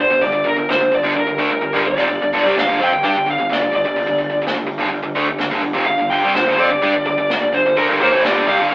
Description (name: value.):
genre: hard rock.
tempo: 127 BPM.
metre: 4/4.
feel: straight.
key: G minor.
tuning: A4 = 440 Hz.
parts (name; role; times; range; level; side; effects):
lead guitar through a small cranked amp; melody; 0.0-8.7 s; Bb4 to G5; -16 LUFS; equal; overdrive.
distorted electric guitar; riff; 0.0-8.7 s; F2 to D4; -19 LUFS; right 1 dB; overdrive.
overdriven semi-hollow guitar; riff; 0.0-8.7 s; F2 to D4; -27 LUFS; left 1 dB; tremolo.
picked electric bass; bass; 0.0-8.7 s; F1 to G2; -25 LUFS; equal; none.
jazz brush drum kit; drums; 0.2-8.7 s; hi-hat, kick drum, snare drum; -25 LUFS; equal; none.
room: moderate studio reverb, RT60 0.6 s.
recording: rough rehearsal-room recording, telephone sound.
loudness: -14 LUFS.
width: side -24 dB against mid.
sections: 0.0-8.7 A section.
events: drum fill 1.2-2.1.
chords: 0.0 G5.